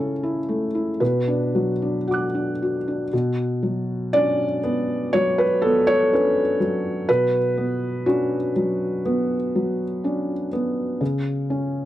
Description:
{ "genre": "neoclassical minimalist piano", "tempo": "61 BPM", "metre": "4/4", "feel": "rubato", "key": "B minor", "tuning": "A4 = 440 Hz", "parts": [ { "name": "felt-muted upright piano", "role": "solo", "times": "0.0-11.9 s", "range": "B2 to F#6", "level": "-20 LUFS", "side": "equal", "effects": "none" } ], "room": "small room ambience", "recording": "dry, close 1970s-style studio recording", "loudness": "-20 LUFS", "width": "side -14 dB against mid", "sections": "0.0-3.1 A section; 3.1-11.9 B section", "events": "none", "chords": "0.0 A/C#; 1.0 Bm; 3.1 Bmadd9; 11.0 N.C.", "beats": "1.01 2.08 | 3.12 4.12 5.12 6.11 | 7.08 8.06 9.04 10.03 | 11.00" }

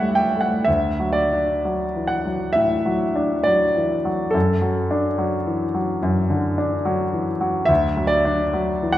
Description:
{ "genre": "classical, romantic nocturne for solo piano", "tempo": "58-73 BPM", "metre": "4/4", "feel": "rubato", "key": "D major", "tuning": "A4 = 441 Hz", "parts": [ { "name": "warm baby grand piano", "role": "solo", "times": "0.0-9.0 s", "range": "D2 to G5", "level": "-18 LUFS", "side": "equal", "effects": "none" } ], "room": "wet recital hall reverb, RT60 1.5 s", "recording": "none", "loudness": "-18 LUFS", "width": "side -13 dB against mid", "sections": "0.0-9.0 A section", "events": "none", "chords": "0.0 A5; 0.7 D; 4.4 D/F#; 7.7 D", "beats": "| 0.67 1.65 2.56 3.47 | 4.35 5.20 6.04 6.86 | 7.70 8.54" }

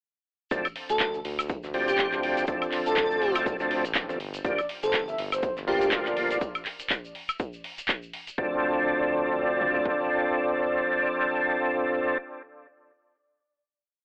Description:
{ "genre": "deep house", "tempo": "122 BPM", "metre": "4/4", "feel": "swing 56% on 16ths", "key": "D minor", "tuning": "A4 = 442 Hz", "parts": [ { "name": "overdriven tonewheel organ", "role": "stabs", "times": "0.5-12.2 s", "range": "F3 to A4", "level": "-28 LUFS", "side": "equal", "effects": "chorus vibrato, slow rotary speaker, sidechain pumping, cassette tape, analog delay" }, { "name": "smooth gliding synth bass", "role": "bass", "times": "0.5-9.8 s", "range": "G1 to D2", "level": "-39 LUFS", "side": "equal", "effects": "sidechain pumping" }, { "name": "house drum kit", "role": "drums", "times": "0.5-8.4 s", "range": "handclaps, hi-hat, woodblock", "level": "-32 LUFS", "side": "equal", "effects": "none" }, { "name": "punchy analog drum machine", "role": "drums", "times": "0.5-10.0 s", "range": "kick drum, toms", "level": "-37 LUFS", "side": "equal", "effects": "none" }, { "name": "soft brush drum kit", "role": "drums", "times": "0.5-6.4 s", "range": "hi-hat, snare drum", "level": "-44 LUFS", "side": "equal", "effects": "none" }, { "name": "tube shaker", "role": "percussion", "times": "0.5-8.4 s", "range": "none", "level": "-47 LUFS", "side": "equal", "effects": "none" }, { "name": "airy dreamy lead", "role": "melody", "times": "0.9-5.8 s", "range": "G4 to A4", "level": "-31 LUFS", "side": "equal", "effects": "chorus, analog delay" }, { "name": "breathy flute-like synth lead", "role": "melody", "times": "4.4-12.2 s", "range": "C5 to E5", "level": "-34 LUFS", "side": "equal", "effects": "chorus, tape echo" } ], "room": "moderate booth ambience, RT60 0.2 s", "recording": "home recording on cassette, telephone sound", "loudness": "-27 LUFS", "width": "mono", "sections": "0.5-8.4 drop; 8.4-12.3 final chord", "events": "drop 0.5-8.4", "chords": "0.5 Dm7; 4.2 Gm7; 8.4 Dm7", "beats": "| 0.51 1.00 1.50 1.99 | 2.48 2.97 3.46 3.95 | 4.45 4.94 5.43 5.92 | 6.41 6.91 7.40 7.89 | 8.38 8.87 9.36 9.86 | 10.35 10.84 11.33 11.82" }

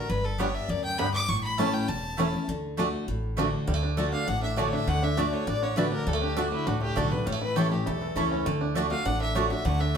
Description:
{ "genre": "bluegrass", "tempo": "201 BPM", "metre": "4/4", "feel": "straight", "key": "D major", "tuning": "A4 = 440 Hz", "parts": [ { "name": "clear fiddle", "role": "melody", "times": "0.0-10.0 s", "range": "E4 to D6", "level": "-31 LUFS", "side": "left 2 dB", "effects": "plate reverb" }, { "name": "picked steel-string acoustic guitar", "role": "accompaniment", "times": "0.0-10.0 s", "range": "E2 to G4", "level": "-29 LUFS", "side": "left 2 dB", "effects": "none" }, { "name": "upright bass", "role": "bass", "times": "0.1-10.0 s", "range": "E1 to D2", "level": "-32 LUFS", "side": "equal", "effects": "none" }, { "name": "bluegrass banjo", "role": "arpeggios", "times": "0.4-10.0 s", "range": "D3 to G4", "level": "-32 LUFS", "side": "right 3 dB", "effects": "none" }, { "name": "mandolin", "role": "stabs", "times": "0.4-10.0 s", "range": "A3 to A5", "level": "-32 LUFS", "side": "right 6 dB", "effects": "none" } ], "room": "wet studio reverb, RT60 0.8 s", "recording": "heard from further back in the room", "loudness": "-25 LUFS", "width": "side -7 dB against mid", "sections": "0.0-3.7 A section; 3.7-10.0 B section", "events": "none", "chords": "0.1 G; 1.3 A; 2.5 D; 7.3 A; 8.5 D", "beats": "| 0.10 0.39 0.69 0.99 | 1.29 1.59 1.89 2.18 | 2.48 2.78 3.08 3.38 | 3.68 3.98 4.28 4.58 | 4.87 5.17 5.47 5.77 | 6.07 6.37 6.67 6.97 | 7.27 7.57 7.87 8.16 | 8.46 8.76 9.06 9.36 | 9.66 9.96" }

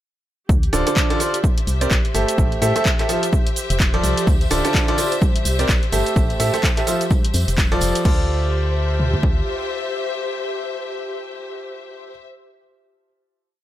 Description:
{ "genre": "piano house", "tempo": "127 BPM", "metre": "4/4", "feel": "swing 59% on 16ths", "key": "D minor", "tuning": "A4 = 440 Hz", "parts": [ { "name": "organ-like FM bass", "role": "bass", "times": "0.5-9.4 s", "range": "D1 to A2", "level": "-21 LUFS", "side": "equal", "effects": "tube saturation, sidechain pumping" }, { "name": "punchy analog drum machine", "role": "drums", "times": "0.5-9.4 s", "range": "kick drum, toms", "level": "-18 LUFS", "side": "equal", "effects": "none" }, { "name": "punchy analog drum machine", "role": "drums", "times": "0.5-8.2 s", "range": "crash cymbal, handclaps, hi-hat, shaker", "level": "-25 LUFS", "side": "equal", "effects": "none" }, { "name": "rich studio string section", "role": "texture", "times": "0.5-12.2 s", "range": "G4 to E5", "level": "-27 LUFS", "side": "left 2 dB", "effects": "sidechain pumping" }, { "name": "bright grand piano", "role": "riff", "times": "0.7-12.1 s", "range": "D3 to E5", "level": "-22 LUFS", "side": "right 1 dB", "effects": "sidechain pumping, tape echo" }, { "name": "tambourine and congas", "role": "percussion", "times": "4.3-8.0 s", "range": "none", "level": "-31 LUFS", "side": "right 2 dB", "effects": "none" } ], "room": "light reverb", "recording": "none", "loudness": "-17 LUFS", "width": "side -13 dB against mid", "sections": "0.5-8.1 drop; 8.1-11.8 final chord", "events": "drop 0.5-8.1", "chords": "0.5 Dm7; 1.4 C7; 2.4 Am7; 3.1 Fmaj7; 4.3 Dm7; 5.2 C7; 6.2 Am7; 6.9 Fmaj7; 8.1 Dm7", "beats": "| 0.49 0.96 1.44 1.91 | 2.38 2.85 3.33 3.80 | 4.27 4.74 5.22 5.69 | 6.16 6.63 7.11 7.58 | 8.05 8.52 9.00 9.47 | 9.94 10.41 10.89 11.36" }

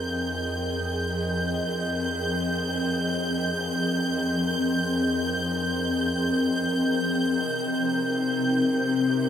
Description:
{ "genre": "ambient", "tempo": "free time", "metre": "none", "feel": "none", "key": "unclear", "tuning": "A4 = 440 Hz", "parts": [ { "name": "glassy FM pad", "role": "sustained chords", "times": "0.0-9.3 s", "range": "C3 to G5", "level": "-25 LUFS", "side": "left 1 dB", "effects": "ensemble chorus, built-in reverb" }, { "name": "bright studio cello section", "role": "bass", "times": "0.0-9.3 s", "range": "F2 to C3", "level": "-34 LUFS", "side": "equal", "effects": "none" }, { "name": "rich studio violin section", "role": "texture", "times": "0.0-9.3 s", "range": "G6", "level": "-29 LUFS", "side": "right 2 dB", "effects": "none" } ], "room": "moderate plate reverb, RT60 3.5 s", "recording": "dreamy mix soaked in reverb", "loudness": "-23 LUFS", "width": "side -9 dB against mid", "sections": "0.0-9.3 A section", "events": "fade-in on ambient pad 0.0-9.3", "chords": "0.0 Fm11; 7.4 Cm7", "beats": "free time" }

